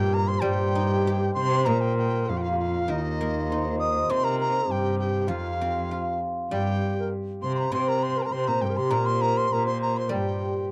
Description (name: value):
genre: chinese traditional, Chinese chamber ensemble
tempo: 99 BPM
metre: 2/4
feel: rubato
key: G jue mode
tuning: A4 = 439 Hz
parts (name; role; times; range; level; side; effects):
- large dizi; melody; 0.0-10.7 s; Eb5 to Eb6; -32 LUFS; equal; none
- bright low xiao; second line; 0.0-10.7 s; Eb4 to Eb5; -35 LUFS; equal; none
- hammered dulcimer; second line; 0.0-10.7 s; Eb4 to Eb5; -31 LUFS; equal; none
- rich cello; second line; 0.0-10.7 s; Eb2 to C3; -30 LUFS; equal; none
- guzheng; accompaniment; 0.0-10.7 s; Bb2 to G4; -36 LUFS; equal; none
room: light reverb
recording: dark, warm production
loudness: -25 LUFS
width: mono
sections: 0.0-1.7 A section; 1.7-10.7 B section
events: none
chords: none